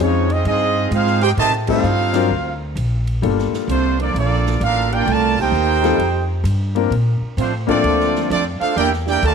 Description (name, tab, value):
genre	jazz, big band swing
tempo	130 BPM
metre	4/4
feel	swing 66% on 8ths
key	Bb major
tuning	A4 = 440 Hz
part	clear trumpet section	melody	0.0-9.3 s	Ab3 to A5	-20 LUFS	right 1 dB	none
part	warm trombone section	second line	0.0-9.3 s	C3 to Ab4	-21 LUFS	right 13 dB	none
part	warm grand piano	accompaniment	0.0-8.3 s	F3 to Bb4	-21 LUFS	left 12 dB	none
part	upright bass	bass	0.0-9.3 s	G1 to Bb2	-20 LUFS	equal	none
part	swinging big-band drum kit	drums	0.0-9.3 s	crash cymbal, hi-hat, kick drum, ride cymbal, snare drum	-34 LUFS	right 5 dB	none
room	light reverb, studio reverb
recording	1960s-style stereo with parts hard left and right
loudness	-15 LUFS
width	side -6 dB against mid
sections	0.0-9.3 A section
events	band accent 1.6, 5.3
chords	0.0 Dbmaj9; 1.4 Am7b5; 2.3 Bb; 3.2 Gm9; 5.1 Cm7; 6.0 Fsus2; 6.9 Bbmaj9; 8.8 Em7b5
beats	0.45 0.92 | 1.38 1.84 2.30 2.76 | 3.22 3.69 4.15 4.61 | 5.07 5.53 5.99 6.46 | 6.92 7.38 7.84 8.30 | 8.76 9.23